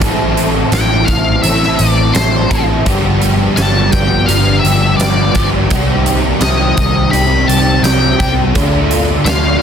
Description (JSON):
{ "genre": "rock, shoegaze and dream pop", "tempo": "84 BPM", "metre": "4/4", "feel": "straight", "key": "unclear", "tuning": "A4 = 439 Hz", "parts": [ { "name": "overdriven semi-hollow guitar", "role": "riff", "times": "0.0-9.6 s", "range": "G2 to A4", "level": "-14 LUFS", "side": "equal", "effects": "ensemble chorus" }, { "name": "vintage muted picked electric bass", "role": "bass", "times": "0.0-9.6 s", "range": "G1 to D2", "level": "-16 LUFS", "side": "equal", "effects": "none" }, { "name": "huge arena drum kit", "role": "drums", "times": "0.0-9.4 s", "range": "hi-hat, kick drum, snare drum", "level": "-17 LUFS", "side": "right 1 dB", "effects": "none" }, { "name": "octave-fuzz lead guitar", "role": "melody", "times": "0.7-9.6 s", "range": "C5 to B5", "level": "-17 LUFS", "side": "left 4 dB", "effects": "distortion, tape echo" } ], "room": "little or no reverb", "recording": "dense, heavily limited modern master", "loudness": "-10 LUFS", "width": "side -8 dB against mid", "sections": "0.0-9.6 A section", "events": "none", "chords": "0.0 Am; 2.9 G7; 5.7 Cm; 8.5 Dm" }